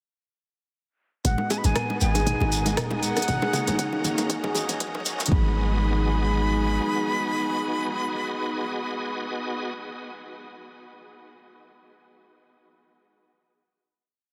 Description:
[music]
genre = afro house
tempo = 118 BPM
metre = 4/4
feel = swing 55% on 16ths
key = G# minor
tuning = A4 = 440 Hz
[part]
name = breathy bright jazz flute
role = melody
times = 1.2-9.7 s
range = F#5 to B5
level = -33 LUFS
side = equal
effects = low-pass filter, diffuse ambient delay
[part]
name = warm analog pad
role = sustained chords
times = 1.2-9.7 s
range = D#3 to G#4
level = -35 LUFS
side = equal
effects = lush chorus, sidechain pumping
[part]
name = handpan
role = arpeggios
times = 1.2-5.6 s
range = G#3 to G#4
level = -35 LUFS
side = equal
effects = sidechain pumping, low-pass filter, diffuse ambient delay
[part]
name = bright tonewheel organ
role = stabs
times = 1.2-9.7 s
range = B3 to D#5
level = -35 LUFS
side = equal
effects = overdrive, chorus vibrato, fast rotary speaker, sidechain pumping, low-pass filter, diffuse ambient delay
[part]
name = warm 808-style bass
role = bass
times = 1.2-6.8 s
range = D#1 to G#1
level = -28 LUFS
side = equal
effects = sidechain pumping
[part]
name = afro-pop drum kit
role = drums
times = 1.2-5.4 s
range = hi-hat, rim click, toms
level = -34 LUFS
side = equal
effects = small room ambience
[part]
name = electronic kick drum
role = drums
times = 1.2-5.4 s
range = none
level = -28 LUFS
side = equal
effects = high-pass filter on kick, small room ambience
[part]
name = shekere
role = percussion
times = 1.3-5.3 s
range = none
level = -36 LUFS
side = equal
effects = none
[part]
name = bongos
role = percussion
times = 1.4-5.3 s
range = none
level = -35 LUFS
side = equal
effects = none
[sound]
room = wet huge ambient reverb, RT60 7.1 s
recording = dreamy mix soaked in reverb, high-pass filter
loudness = -25 LUFS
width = mono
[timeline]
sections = 1.2-5.3 build; 5.3-9.4 final chord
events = build-up 1.2-5.3; drum fill 1.2-5.3; filter sweep on tonewheel organ 1.2-5.3; filter sweep 1.2-5.3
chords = 1.2 G#m7; 3.3 D#m7/G#; 5.3 G#m7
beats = | 1.25 1.76 2.27 2.77 | 3.28 3.79 4.30 4.81 | 5.32 5.83 6.33 6.84 | 7.35 7.86 8.37 8.88

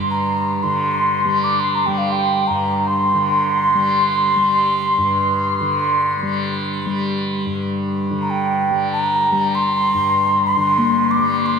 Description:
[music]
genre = world meditative, free-time meditation music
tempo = free time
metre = none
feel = none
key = G minor pentatonic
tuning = A4 = 440 Hz
[part]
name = tanpura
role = drone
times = 0.0-11.6 s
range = G2 to G3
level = -22 LUFS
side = equal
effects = none
[part]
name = breathy reedy alto ocarina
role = melody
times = 0.1-11.6 s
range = F5 to D6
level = -17 LUFS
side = equal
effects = shimmer reverb, ping-pong delay
[part]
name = bronze singing bowl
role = texture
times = 10.8-11.6 s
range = Bb3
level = -19 LUFS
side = left 7 dB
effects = shimmer reverb
[sound]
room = wet cathedral reverb, RT60 6.4 s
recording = in a vast, echoing space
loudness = -16 LUFS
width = side -6 dB against mid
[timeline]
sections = 0.0-11.6 A section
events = none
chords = none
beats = free time

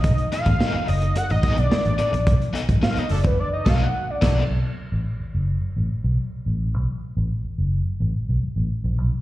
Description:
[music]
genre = funk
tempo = 107 BPM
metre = 4/4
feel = straight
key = B mixolydian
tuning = A4 = 440 Hz
[part]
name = fat analog lead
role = melody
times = 0.0-4.4 s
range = B4 to F#5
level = -26 LUFS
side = equal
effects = chorus, slapback echo
[part]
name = vintage muted fingered electric bass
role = bass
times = 0.0-9.1 s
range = F#1 to B1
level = -22 LUFS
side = equal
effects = none
[part]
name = crunchy breakbeat drum kit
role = drums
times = 0.0-4.4 s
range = crash cymbal, hi-hat, kick drum, snare drum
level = -23 LUFS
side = equal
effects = none
[part]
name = crunchy overdriven guitar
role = accompaniment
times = 0.3-4.4 s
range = B3 to D#5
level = -30 LUFS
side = left 5 dB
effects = tremolo, slapback echo
[part]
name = clear horn section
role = second line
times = 3.1-4.4 s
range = F#3 to A4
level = -34 LUFS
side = right 1 dB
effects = slapback echo
[sound]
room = little or no reverb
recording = live gig heard through the venue's PA, recital hall reverb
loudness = -20 LUFS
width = side -16 dB against mid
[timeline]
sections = 0.0-4.5 A section; 4.5-9.2 B section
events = analog synth lead solo 0.0-4.5; band accent 2.3-4.5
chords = 0.0 B7#9; 4.5 B5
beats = | 0.04 0.60 1.16 1.71 | 2.27 2.83 3.38 3.94 | 4.50 5.06 5.62 6.18 | 6.74 7.30 7.86 8.42 | 8.98

